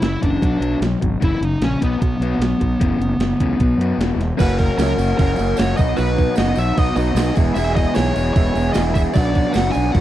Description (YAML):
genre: indie rock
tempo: 151 BPM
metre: 4/4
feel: straight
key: F# mixolydian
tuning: A4 = 436 Hz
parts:
  - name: dark smooth lead guitar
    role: melody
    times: 0.0-10.0 s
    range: B3 to G#5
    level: -23 LUFS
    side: equal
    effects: overdrive
  - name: overdriven electric guitar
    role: riff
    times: 0.0-10.0 s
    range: E2 to G#4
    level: -23 LUFS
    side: left 7 dB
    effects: none
  - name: fuzz fingered electric bass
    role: bass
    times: 0.0-10.0 s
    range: E1 to F#2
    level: -21 LUFS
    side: right 1 dB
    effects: overdrive
  - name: gated 80s digital drum machine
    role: drums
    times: 0.0-10.0 s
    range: crash cymbal, hi-hat, kick drum, snare drum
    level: -21 LUFS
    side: right 1 dB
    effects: gated reverb, gated reverb snare
  - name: electric guitar through a small old amp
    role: riff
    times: 4.4-10.0 s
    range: E3 to G#4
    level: -24 LUFS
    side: right 9 dB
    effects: ensemble chorus
  - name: tambourine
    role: percussion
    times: 4.4-9.8 s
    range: none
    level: -41 LUFS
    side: right 21 dB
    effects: none
room: little or no reverb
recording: dry, close 1970s-style studio recording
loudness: -16 LUFS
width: side -13 dB against mid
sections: 0.0-4.4 A section; 4.4-10.0 B section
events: drum fill 4.2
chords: 0.4 Bm; 1.2 F#5; 1.8 B5; 2.8 F#7sus4; 3.6 B5; 4.0 E5; 4.4 F#; 5.8 B; 7.4 E; 9.1 Bm